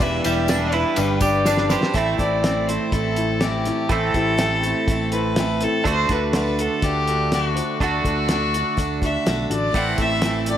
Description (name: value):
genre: folk rock and heartland rock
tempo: 123 BPM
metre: 4/4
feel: straight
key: A dorian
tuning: A4 = 440 Hz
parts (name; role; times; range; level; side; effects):
- rich fiddle; melody; 0.0-10.6 s; F#4 to F#5; -24 LUFS; left 2 dB; analog delay
- overdriven reed electric piano; accompaniment; 0.0-10.6 s; C4 to D5; -31 LUFS; left 7 dB; none
- picked steel-string acoustic guitar; accompaniment; 0.0-10.6 s; A2 to B4; -27 LUFS; left 6 dB; none
- twelve-string electric guitar; riff; 0.0-10.6 s; E2 to G4; -24 LUFS; right 7 dB; none
- fingered electric bass; bass; 0.0-10.6 s; E1 to D2; -26 LUFS; equal; none
- cloth-damped thuddy drum kit; drums; 0.0-10.6 s; hi-hat, kick drum, ride cymbal, snare drum; -24 LUFS; equal; none
- tambourine; percussion; 0.0-1.8 s; none; -34 LUFS; left 7 dB; none
room: light reverb, studio reverb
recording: none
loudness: -18 LUFS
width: side -10 dB against mid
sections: 0.0-2.0 A section; 2.0-10.6 B section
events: drum fill 1.5-2.0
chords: 0.0 Em7; 1.0 G; 2.0 Am; 5.9 D; 9.7 Am